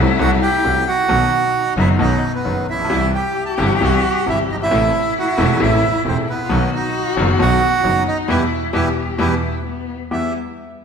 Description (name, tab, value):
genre	tango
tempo	134 BPM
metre	4/4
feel	rubato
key	E harmonic minor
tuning	A4 = 440 Hz
part	warm cello	second line	0.0-10.3 s	B3 to G4	-24 LUFS	left 5 dB	none
part	bright grand piano	accompaniment	0.0-10.3 s	E1 to G4	-21 LUFS	left 2 dB	none
part	rich chamber string section	stabs	0.0-10.3 s	F#3 to E4	-28 LUFS	equal	none
part	rich double bass	bass	0.0-10.3 s	E1 to E2	-21 LUFS	right 1 dB	none
part	bandoneon	melody	0.2-10.3 s	B3 to A5	-19 LUFS	right 4 dB	none
room	moderate scoring stage reverb, RT60 1.9 s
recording	recorded in a church or concert hall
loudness	-15 LUFS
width	side -6 dB against mid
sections	0.0-10.1 A section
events	band accent 8.3-10.1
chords	0.0 F#dim/C; 1.1 B; 2.9 C; 4.7 Am; 6.5 B; 8.3 Em; 9.7 N.C.; 10.1 Em